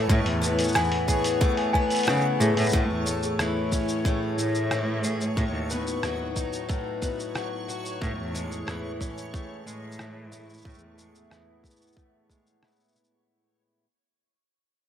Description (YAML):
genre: folktronica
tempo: 91 BPM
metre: 4/4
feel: straight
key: A lydian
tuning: A4 = 440 Hz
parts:
  - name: small celesta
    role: second line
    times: 0.0-2.8 s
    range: G#4 to G#5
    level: -30 LUFS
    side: equal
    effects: digital delay, plate reverb
  - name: warbly tape-like pad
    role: sustained chords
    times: 0.0-13.3 s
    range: A3 to G#5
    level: -33 LUFS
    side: left 4 dB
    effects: chorus, built-in reverb, plate reverb
  - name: picked twelve-string acoustic guitar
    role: arpeggios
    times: 0.0-13.8 s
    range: A2 to G#4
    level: -29 LUFS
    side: left 1 dB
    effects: low-pass filter, ping-pong delay
  - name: backwards swelling texture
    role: texture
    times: 0.0-13.3 s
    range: C#5 to C#6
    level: -38 LUFS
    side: right 1 dB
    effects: built-in reverb, plate reverb
  - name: rich cello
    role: bass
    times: 0.1-11.4 s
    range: D#2 to C#3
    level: -29 LUFS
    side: right 1 dB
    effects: none
  - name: electronic kick drum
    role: drums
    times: 0.1-12.4 s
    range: none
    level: -27 LUFS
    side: equal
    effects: none
  - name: lo-fi sampler-style drum kit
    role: drums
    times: 0.1-13.2 s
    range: hi-hat, rim click, shaker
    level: -31 LUFS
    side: equal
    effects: none
room: light reverb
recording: none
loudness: -24 LUFS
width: side -9 dB against mid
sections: 0.0-2.7 A section; 2.7-13.3 B section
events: fade-out 2.7-13.3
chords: 0.1 E; 2.7 Amaj7; 5.4 B7; 8.0 Amaj7; 10.6 E